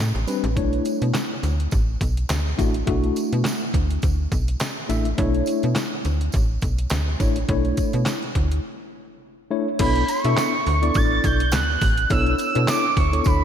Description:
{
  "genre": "early-eighties boogie funk",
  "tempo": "104 BPM",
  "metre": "4/4",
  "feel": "swing 56% on 16ths",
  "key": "B minor",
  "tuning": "A4 = 440 Hz",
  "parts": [
    { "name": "slap-like FM bass", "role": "bass", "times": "0.0-13.4 s", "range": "A1 to B2", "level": "-22 LUFS", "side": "equal", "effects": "none" },
    { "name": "detuned 8-bit digital drum machine", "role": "drums", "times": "0.2-13.4 s", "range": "crash cymbal, handclaps, hi-hat, kick drum, snare drum", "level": "-25 LUFS", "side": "equal", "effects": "none" },
    { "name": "tine electric piano", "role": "accompaniment", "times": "0.3-13.4 s", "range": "G3 to E5", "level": "-25 LUFS", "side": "left 2 dB", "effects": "medium stereo tremolo" },
    { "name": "tambourine", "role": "percussion", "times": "0.3-13.4 s", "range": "none", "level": "-38 LUFS", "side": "right 6 dB", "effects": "none" },
    { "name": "expressive portamento lead", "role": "melody", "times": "9.8-13.4 s", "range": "B5 to A6", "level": "-22 LUFS", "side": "right 4 dB", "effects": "chorus, tape echo" }
  ],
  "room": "moderate lush hall reverb, RT60 2.4 s",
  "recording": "dreamy mix soaked in reverb, faint mains hum",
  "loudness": "-19 LUFS",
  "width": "side -9 dB against mid",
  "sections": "0.0-9.8 A section; 9.8-13.4 B section",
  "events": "break 8.6-9.8",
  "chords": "0.0 Am11; 0.6 Bm11"
}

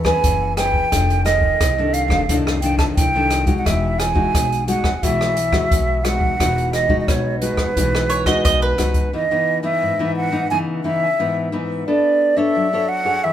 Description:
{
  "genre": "samba and choro",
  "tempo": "88 BPM",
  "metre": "4/4",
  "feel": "straight",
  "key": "E major",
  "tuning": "A4 = 440 Hz",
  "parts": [
    { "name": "breathy mellow silver concert flute", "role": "melody", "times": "0.0-13.3 s", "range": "B4 to A5", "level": "-20 LUFS", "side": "right 2 dB", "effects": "tape echo" },
    { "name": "nylon-string guitar", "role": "accompaniment", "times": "0.0-13.3 s", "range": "F2 to C#5", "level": "-22 LUFS", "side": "left 3 dB", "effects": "none" },
    { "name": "upright bass", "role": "bass", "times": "0.0-9.1 s", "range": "E1 to E2", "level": "-23 LUFS", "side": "equal", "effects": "none" },
    { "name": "open jazz drum kit", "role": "drums", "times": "0.0-9.1 s", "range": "hi-hat, kick drum, rim click", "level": "-21 LUFS", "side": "equal", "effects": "none" },
    { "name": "mandolin", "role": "second line", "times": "8.1-9.1 s", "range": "B4 to D#5", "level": "-19 LUFS", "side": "right 3 dB", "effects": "none" }
  ],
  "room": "moderate studio reverb, RT60 0.7 s",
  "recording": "band playing live in one room",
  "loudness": "-16 LUFS",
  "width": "side -10 dB against mid",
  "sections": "0.0-9.1 A section; 9.1-13.3 B section",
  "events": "none",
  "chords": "0.0 Amaj9; 0.9 F6; 3.7 Emaj9; 9.1 C#m9; 11.9 Bm9"
}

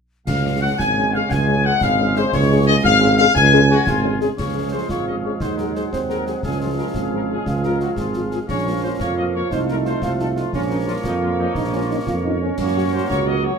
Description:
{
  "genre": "military-style march for wind band",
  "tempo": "117 BPM (dotted quarters)",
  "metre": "6/8",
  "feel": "straight",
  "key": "Db major",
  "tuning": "A4 = 443 Hz",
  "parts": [
    { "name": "mellow trumpet section", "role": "melody", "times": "0.3-13.6 s", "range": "Eb4 to Ab5", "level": "-24 LUFS", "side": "left 4 dB", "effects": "none" },
    { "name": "bright woodwind section", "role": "second line", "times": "0.3-13.6 s", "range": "Ab4 to Ab5", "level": "-25 LUFS", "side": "left 3 dB", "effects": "none" },
    { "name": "wooden piccolo", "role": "second line", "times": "0.3-4.2 s", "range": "C6 to Ab6", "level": "-25 LUFS", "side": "left 5 dB", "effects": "none" },
    { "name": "warm trombone section", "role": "sustained chords", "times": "0.3-13.6 s", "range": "Db3 to Bb3", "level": "-28 LUFS", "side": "right 1 dB", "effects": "none" },
    { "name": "mellow tuba", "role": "bass", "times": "0.3-13.5 s", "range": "Ab1 to Gb2", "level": "-21 LUFS", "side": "right 3 dB", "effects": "none" },
    { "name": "concert snare drum, clash cymbals and concert bass drum", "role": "drums", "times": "0.3-13.3 s", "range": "none", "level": "-30 LUFS", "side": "left 1 dB", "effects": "none" },
    { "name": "mellow French horn section", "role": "accompaniment", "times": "0.4-13.5 s", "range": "F3 to Ab4", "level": "-26 LUFS", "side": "left 4 dB", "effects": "none" },
    { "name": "warm euphonium", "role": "second line", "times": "4.4-13.6 s", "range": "C4 to Ab4", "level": "-25 LUFS", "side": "right 4 dB", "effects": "none" }
  ],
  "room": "wet large studio reverb, RT60 0.8 s",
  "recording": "faint mains hum",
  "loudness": "-17 LUFS",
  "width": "side -6 dB against mid",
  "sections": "0.3-4.4 A section; 4.4-13.6 B section",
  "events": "none",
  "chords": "0.3 Db; 5.4 Ab7/Eb; 6.4 Db; 8.5 Bbm; 9.5 F7/C; 10.5 Bbm; 12.6 Gb"
}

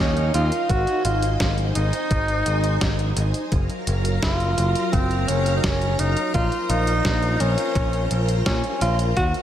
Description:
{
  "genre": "synthwave",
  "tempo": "85 BPM",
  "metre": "4/4",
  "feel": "straight",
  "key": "unclear",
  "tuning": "A4 = 437 Hz",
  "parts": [
    { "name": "warm tenor saxophone", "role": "melody", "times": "0.0-9.3 s", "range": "C4 to Gb4", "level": "-24 LUFS", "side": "equal", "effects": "slapback echo, tape echo" },
    { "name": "string machine, full ensemble", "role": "sustained chords", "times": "0.0-9.4 s", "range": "Gb3 to Bb5", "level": "-28 LUFS", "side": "equal", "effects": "ensemble chorus, sidechain pumping" },
    { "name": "modern bright picked electric bass", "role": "bass", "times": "0.0-9.3 s", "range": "Gb1 to Bb2", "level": "-22 LUFS", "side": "equal", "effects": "none" },
    { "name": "detuned 8-bit digital drum machine", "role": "drums", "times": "0.2-9.4 s", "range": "hi-hat, snare drum", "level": "-28 LUFS", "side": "equal", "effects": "slapback echo" },
    { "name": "electronic kick drum", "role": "drums", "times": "0.7-9.3 s", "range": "none", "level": "-25 LUFS", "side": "equal", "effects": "none" }
  ],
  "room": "moderate lush hall reverb, RT60 2.3 s",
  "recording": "big arena sound",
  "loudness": "-19 LUFS",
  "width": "side -10 dB against mid",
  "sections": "0.0-9.4 A section",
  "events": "none",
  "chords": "0.0 Ebsus2; 0.7 Ab; 3.5 Gbmaj7; 6.3 Bbmadd9"
}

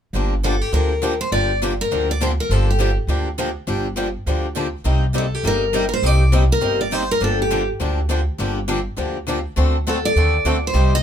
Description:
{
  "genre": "acoustic string swing (jazz manouche)",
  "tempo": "204 BPM",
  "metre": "4/4",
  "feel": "swing 57% on 8ths",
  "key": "G minor",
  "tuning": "A4 = 439 Hz",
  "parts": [
    { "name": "picked swing-style acoustic guitar", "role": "accompaniment", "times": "0.1-10.9 s", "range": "C3 to A4", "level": "-24 LUFS", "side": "left 5 dB", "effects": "none" },
    { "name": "picked swing-style acoustic guitar", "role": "accompaniment", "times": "0.1-10.9 s", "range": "C3 to A4", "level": "-28 LUFS", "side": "right 8 dB", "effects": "none" },
    { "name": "upright bass", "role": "bass", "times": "0.1-11.0 s", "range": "G1 to Eb2", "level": "-20 LUFS", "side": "equal", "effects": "none" },
    { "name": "picked steel-string acoustic guitar", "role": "melody", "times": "0.4-3.0, 5.2-7.7, 9.9-11.0 s", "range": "G4 to Eb5", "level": "-21 LUFS", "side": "equal", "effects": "none" }
  ],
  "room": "little or no reverb",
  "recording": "minimal, uncompressed stereo recording",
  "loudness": "-17 LUFS",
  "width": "side -9 dB against mid",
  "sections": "0.1-11.0 A section",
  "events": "none",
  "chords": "0.1 Gm7; 4.9 Cm7; 7.2 Gm7; 9.6 D7"
}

